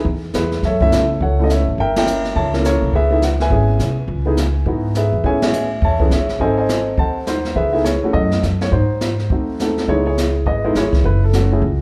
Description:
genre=jazz piano trio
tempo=207 BPM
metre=4/4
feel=swing 61% on 8ths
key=C# minor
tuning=A4 = 441 Hz
part: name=warm upright piano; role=melody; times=0.0-11.8 s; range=G#3 to A5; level=-21 LUFS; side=equal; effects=none
part: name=upright bass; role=bass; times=0.0-11.8 s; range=F#1 to C#3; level=-21 LUFS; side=equal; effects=none
part: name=jazz brush drum kit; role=drums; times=0.1-11.8 s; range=brushed snare drum, hi-hat, kick drum, ride cymbal, snare drum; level=-24 LUFS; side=equal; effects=none
room=moderate recital hall reverb, RT60 1.3 s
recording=recorded in a church or concert hall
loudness=-17 LUFS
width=mono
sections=0.0-9.9 A section; 9.9-11.8 A section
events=band accent 1.9, 5.4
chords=0.0 C#m7 (rootless); 0.6 F#m7; 1.8 Gdim7; 2.9 C#m7; 5.2 Amaj7; 6.4 G#7b9; 7.6 C#m7; 8.1 F#m7; 8.7 G#7b9; 9.9 C#m7; 11.0 F#m7

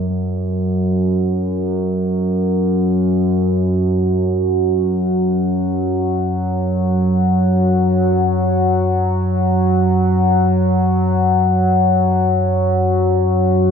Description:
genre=ambient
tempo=free time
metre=none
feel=none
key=unclear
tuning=A4 = 440 Hz
part: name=analog drone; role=solo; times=0.0-13.7 s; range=F#2 to F#3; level=-14 LUFS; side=equal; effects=chorus, diffuse ambient delay
room=moderate plate reverb, RT60 2.9 s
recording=dreamy mix soaked in reverb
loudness=-14 LUFS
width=side -7 dB against mid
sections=0.1-13.7 A section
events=none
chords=none

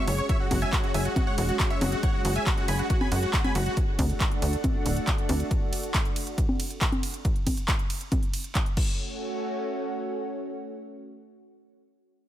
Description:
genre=uplifting trance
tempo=138 BPM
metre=4/4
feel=straight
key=F# minor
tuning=A4 = 440 Hz
part: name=dense compressed supersaw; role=melody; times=0.0-3.7 s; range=F#4 to B5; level=-30 LUFS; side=right 1 dB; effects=sidechain pumping, tape echo
part: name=lush unison pad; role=sustained chords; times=0.0-11.7 s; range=G#3 to F#4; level=-33 LUFS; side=equal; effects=chorus, sidechain pumping
part: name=tight sequencer bass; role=bass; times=0.1-5.4 s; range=D1 to F#2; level=-26 LUFS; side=equal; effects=sidechain pumping
part: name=big-room dance drum kit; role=drums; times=0.1-8.9 s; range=congas, crash cymbal, handclaps, hi-hat, ride cymbal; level=-31 LUFS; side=equal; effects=none
part: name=electronic kick drum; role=drums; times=0.3-8.9 s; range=none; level=-27 LUFS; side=equal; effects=none
room=little or no reverb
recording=none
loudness=-24 LUFS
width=side -12 dB against mid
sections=0.0-9.0 A section; 9.0-12.3 B section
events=drop 0.0-9.0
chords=0.0 F#sus2; 3.8 D; 8.8 F#m

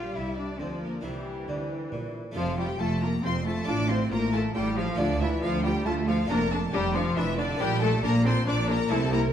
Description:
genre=classical, baroque-style concerto movement with solo episodes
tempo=137 BPM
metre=3/4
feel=straight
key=F major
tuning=A4 = 437 Hz
part: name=clear chamber violin section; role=melody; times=0.0-9.2 s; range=C5 to D6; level=-36 LUFS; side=left 2 dB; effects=none
part: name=rich cello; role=melody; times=0.0-9.2 s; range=D3 to F4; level=-30 LUFS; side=left 2 dB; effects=none
part: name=rich chamber violin section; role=second line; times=0.0-9.3 s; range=D4 to F5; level=-33 LUFS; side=left 3 dB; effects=none
part: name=clear studio viola section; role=accompaniment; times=0.0-9.2 s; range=E3 to F4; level=-34 LUFS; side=equal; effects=none
part: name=harpsichord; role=accompaniment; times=0.0-9.3 s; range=D2 to G4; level=-36 LUFS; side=equal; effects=none
part: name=dark chamber double bass section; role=bass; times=0.0-9.3 s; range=F1 to D2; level=-31 LUFS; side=right 2 dB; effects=none
part: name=rich studio cello section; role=bass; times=0.0-9.3 s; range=D2 to D3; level=-32 LUFS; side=right 2 dB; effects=none
room=wet recital hall reverb, RT60 1.7 s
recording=dark, warm production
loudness=-24 LUFS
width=side -9 dB against mid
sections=0.0-2.4 A section; 2.4-9.3 B section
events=none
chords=0.0 Gm/Bb; 1.0 C; 2.4 F; 3.7 F/A; 5.0 Dm; 6.3 Dm/F; 7.6 Gm/Bb

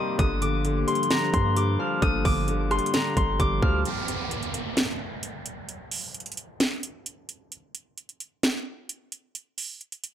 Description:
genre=hip hop, trap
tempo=131 BPM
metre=4/4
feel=half-time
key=unclear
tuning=A4 = 440 Hz
part: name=Celtic harp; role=melody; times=0.0-4.7 s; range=Bb5 to F6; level=-28 LUFS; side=left 1 dB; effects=low-pass filter, digital delay
part: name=warm concert grand piano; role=accompaniment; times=0.0-3.9 s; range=C3 to G3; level=-29 LUFS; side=left 2 dB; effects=low-pass filter
part: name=hollow soft pad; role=sustained chords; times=0.0-3.8 s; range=Eb3 to G4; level=-34 LUFS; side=left 2 dB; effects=chorus
part: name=long sustained 808-style bass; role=bass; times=0.2-3.8 s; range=G1 to G2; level=-27 LUFS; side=right 1 dB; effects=none
part: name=trap drum kit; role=drums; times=0.2-10.1 s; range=hi-hat, kick drum, rim click, snare drum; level=-26 LUFS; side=right 1 dB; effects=overdrive
part: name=downlifter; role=sound effects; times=3.9-7.5 s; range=none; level=-34 LUFS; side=right 2 dB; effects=none
room=light reverb, digital ambience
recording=none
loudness=-23 LUFS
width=side -10 dB against mid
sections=0.0-3.9 A section; 3.9-10.1 B section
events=break 3.9-10.1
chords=0.2 Gm7; 3.9 N.C.

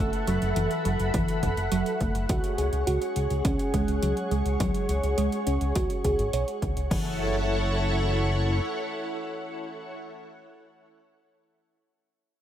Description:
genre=synthwave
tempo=104 BPM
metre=4/4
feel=straight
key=F# minor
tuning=A4 = 440 Hz
part: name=string machine, full ensemble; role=sustained chords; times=0.0-10.0 s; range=E4 to C#6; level=-29 LUFS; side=equal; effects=ensemble chorus, sidechain pumping
part: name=thumb-piano-like synth pluck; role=arpeggios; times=0.0-7.2 s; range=E3 to C#5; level=-30 LUFS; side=right 2 dB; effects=chorus, tape echo
part: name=fat analog bass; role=bass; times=0.0-8.6 s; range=F#1 to C#2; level=-28 LUFS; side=equal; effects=tube saturation, sidechain pumping
part: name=80s electronic pad drums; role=drums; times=0.1-7.0 s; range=crash cymbal, hi-hat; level=-40 LUFS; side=right 2 dB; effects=overdrive
part: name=electronic kick drum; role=drums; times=1.1-7.0 s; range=none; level=-29 LUFS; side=equal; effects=overdrive
room=light reverb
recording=none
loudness=-24 LUFS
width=side -11 dB against mid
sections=0.0-6.9 A section; 6.9-9.2 B section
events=filter sweep on analog synth bass 0.0-6.9; filter sweep on string machine 0.0-6.9; filter sweep on synth arpeggio sound 0.0-6.9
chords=0.0 F#m7; 2.3 C#sus4; 6.9 F#m7

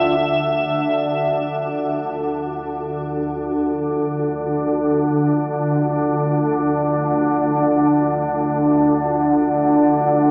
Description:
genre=dark ambient drone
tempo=free time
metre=none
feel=none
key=D minor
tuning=A4 = 442 Hz
part: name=dark analog pad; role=sustained chords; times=0.0-10.3 s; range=D4 to E5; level=-25 LUFS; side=equal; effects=chorus
part: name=organ-like drone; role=drone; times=0.0-10.3 s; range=D2 to D3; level=-21 LUFS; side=equal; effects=ensemble chorus, built-in reverb
room=wet plate reverb, RT60 2.7 s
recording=small speaker sound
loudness=-19 LUFS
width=mono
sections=0.2-10.3 A section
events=fade-in on analog synth pad 0.2-10.3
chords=0.2 Dmadd9

